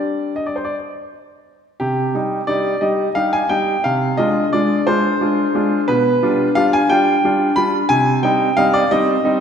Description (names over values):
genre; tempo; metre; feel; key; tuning
classical-period piano sonatina; 59 BPM (dotted quarters); 6/8; straight; C minor; A4 = 441 Hz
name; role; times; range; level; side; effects
clear baby grand piano; solo; 0.0-9.4 s; B2 to B5; -15 LUFS; equal; none
room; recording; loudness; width
wet scoring stage reverb, RT60 2.0 s; none; -15 LUFS; side -7 dB against mid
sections
0.0-1.8 A section; 1.8-9.4 B section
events
none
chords
0.0 G5; 1.8 Cm; 3.9 Dm7b5/C; 5.9 G7/B; 7.9 Cm